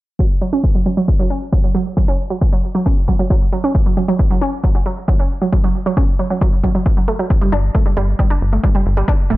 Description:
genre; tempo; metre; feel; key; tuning
driving peak-time techno; 135 BPM; 4/4; straight; unclear; A4 = 439 Hz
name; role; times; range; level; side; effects
analog pluck; riff; 0.2-9.4 s; F#3 to D4; -19 LUFS; right 2 dB; chorus, sidechain pumping, tape echo
electronic kick drum; drums; 0.2-9.2 s; none; -15 LUFS; equal; none
tight sequencer bass; bass; 7.5-9.4 s; D1 to G1; -16 LUFS; equal; tube saturation, sidechain pumping
room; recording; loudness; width
little or no reverb; low-pass filter; -14 LUFS; side -18 dB against mid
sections
0.2-9.4 A section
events
filter sweep on synth arpeggio sound 0.2-9.4; filter sweep 0.2-9.4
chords
0.2 N.C.; 7.3 G5

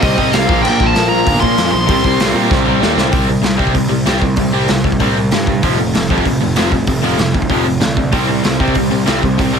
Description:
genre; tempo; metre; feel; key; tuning
punk rock; 192 BPM; 4/4; straight; unclear; A4 = 440 Hz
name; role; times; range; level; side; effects
smooth overdriven lead guitar; melody; 0.0-2.8 s; Eb5 to C6; -18 LUFS; equal; none
crunchy overdriven guitar; riff; 0.0-3.1, 8.1-9.6 s; Bb2 to C4; -19 LUFS; equal; none
overdriven electric guitar; riff; 0.0-9.6 s; F2 to C4; -18 LUFS; right 13 dB; none
raw garage guitar; riff; 0.0-9.6 s; F2 to C4; -19 LUFS; left 16 dB; overdrive
fuzz picked electric bass; bass; 0.0-9.6 s; F1 to C3; -19 LUFS; equal; overdrive
raw garage drum kit; drums; 0.0-9.5 s; crash cymbal, hi-hat, kick drum, snare drum; -17 LUFS; equal; none
room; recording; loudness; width
little or no reverb; heavily compressed radio sound; -11 LUFS; side -6 dB against mid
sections
0.0-3.1 A section; 3.1-9.6 B section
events
drum fill 2.5-3.1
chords
0.5 Bb5; 1.9 C5; 5.6 F5; 8.1 C5

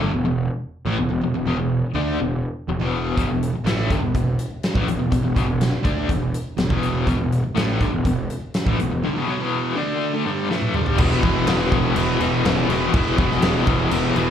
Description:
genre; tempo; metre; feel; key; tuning
hard rock; 123 BPM; 4/4; straight; E major from 11.0 s; A4 = 444 Hz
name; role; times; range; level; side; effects
biting overdriven guitar; riff; 0.0-14.3 s; E2 to D4; -24 LUFS; left 8 dB; tremolo, slapback echo
sludgy distorted guitar; riff; 0.0-14.3 s; E2 to D4; -25 LUFS; right 8 dB; overdrive, slapback echo
fuzz picked electric bass; bass; 0.0-14.3 s; E1 to D2; -24 LUFS; equal; overdrive
huge arena drum kit; drums; 3.2-14.3 s; crash cymbal, hi-hat, kick drum, snare drum, toms; -23 LUFS; equal; none
high-gain distorted guitar; riff; 11.0-14.3 s; E3 to E4; -26 LUFS; right 1 dB; distortion, slapback echo
room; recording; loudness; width
moderate club reverb, RT60 0.6 s; live gig heard through the venue's PA, club reverb; -19 LUFS; side -9 dB against mid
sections
0.0-11.0 A section; 11.0-14.3 B section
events
drum fill 10.5-11.0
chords
0.0 E5; 11.0 E

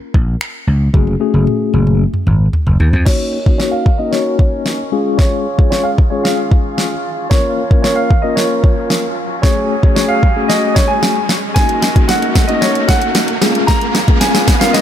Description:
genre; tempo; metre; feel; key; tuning
dance-pop; 113 BPM; 4/4; straight; unclear; A4 = 440 Hz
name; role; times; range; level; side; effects
vintage slap bass; bass; 0.1-3.0 s; Gb1 to F2; -12 LUFS; equal; sidechain pumping
smooth R&B drum kit; drums; 0.1-14.8 s; crash cymbal, finger snaps, hi-hat, kick drum, snare drum, toms; -14 LUFS; equal; none
mellow tine electric piano; accompaniment; 0.9-14.8 s; Ab3 to Bb4; -19 LUFS; left 5 dB; medium stereo tremolo, sidechain pumping, low-pass filter
clear grand piano; melody; 3.1-14.8 s; Db5 to Bb5; -18 LUFS; right 1 dB; low-pass filter, digital delay
breathy small flute group; sustained chords; 3.1-14.8 s; Db4 to Ab5; -24 LUFS; equal; sidechain pumping, low-pass filter
riser; sound effects; 4.8-14.8 s; none; -22 LUFS; right 1 dB; none
room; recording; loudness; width
little or no reverb; none; -11 LUFS; side -10 dB against mid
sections
0.0-3.1 A section; 3.1-14.8 B section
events
drum fill 0.9-3.1, 3.1-14.8; build-up 3.1-14.8; filter sweep 3.1-14.8; riser 4.8-14.8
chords
0.0 Bbm; 0.9 Gbmadd9; 3.1 Ebm7; 4.9 Db; 7.3 Bbm; 9.4 Gbmadd9; 11.6 Ebm7; 13.4 Db

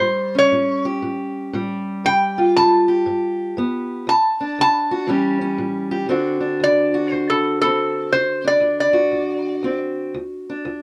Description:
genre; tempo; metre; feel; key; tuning
acoustic country blues, solo or duo; 118 BPM; 4/4; swing 64% on 8ths; D mixolydian; A4 = 440 Hz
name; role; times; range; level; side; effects
lap resonator guitar; melody; 0.0-9.8 s; A4 to A5; -20 LUFS; equal; plate reverb
fingerpicked steel-string acoustic guitar; accompaniment; 0.0-10.8 s; D2 to G4; -23 LUFS; equal; none
room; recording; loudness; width
wet booth ambience, RT60 0.2 s; none; -19 LUFS; mono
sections
0.0-6.1 A section; 6.1-10.8 A section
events
resonator guitar played with a steel bar solo 0.0-6.1, 6.1-10.8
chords
0.0 A7; 2.0 G7; 4.1 D; 5.1 A7; 6.1 D7

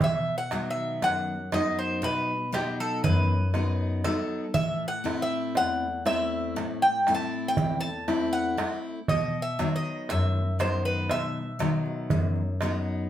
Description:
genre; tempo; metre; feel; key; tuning
greek folk, Greek bouzouki band; 119 BPM (eighths); 9/8; straight; unclear; A4 = 441 Hz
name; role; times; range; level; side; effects
Greek bouzouki; melody; 0.0-12.6 s; G4 to A5; -28 LUFS; equal; none
picked steel-string acoustic guitar; accompaniment; 0.0-13.1 s; E2 to E4; -28 LUFS; left 2 dB; none
darbuka; percussion; 0.0-12.8 s; none; -30 LUFS; right 3 dB; none
room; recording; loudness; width
wet studio reverb, RT60 0.6 s; heard from further back in the room; -25 LUFS; side -11 dB against mid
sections
0.0-13.1 A section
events
none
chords
0.0 B; 4.5 Am; 9.1 B

